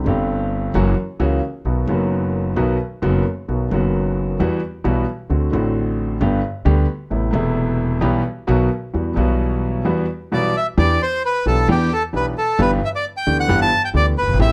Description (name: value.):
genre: tango.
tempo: 132 BPM.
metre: 4/4.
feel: rubato.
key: E minor.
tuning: A4 = 439 Hz.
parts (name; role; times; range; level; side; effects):
warm concert grand piano; accompaniment; 0.0-14.5 s; E1 to G4; -22 LUFS; equal; none.
upright bass; bass; 0.0-14.5 s; E1 to E2; -23 LUFS; equal; none.
bandoneon; melody; 10.3-14.5 s; G4 to A5; -21 LUFS; equal; none.
room: little or no reverb.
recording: close, detailed microphones.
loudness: -19 LUFS.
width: mono.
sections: 0.0-10.8 A section; 10.8-14.5 B section.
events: none.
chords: 0.0 Csus2; 0.7 F#7; 1.7 B; 4.4 Emadd9; 5.3 D7; 6.2 G; 7.1 Amadd9; 8.0 Em/B; 8.5 B; 8.9 Emadd9; 10.8 Em7; 12.6 G6.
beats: 0.29 0.74 1.20 | 1.65 2.11 2.57 3.03 | 3.49 3.94 4.40 4.85 | 5.31 5.76 6.21 6.66 | 7.12 7.57 8.02 8.48 | 8.94 9.39 9.85 10.32 | 10.78 11.23 11.69 12.14 | 12.59 13.05 13.49 13.94 | 14.39.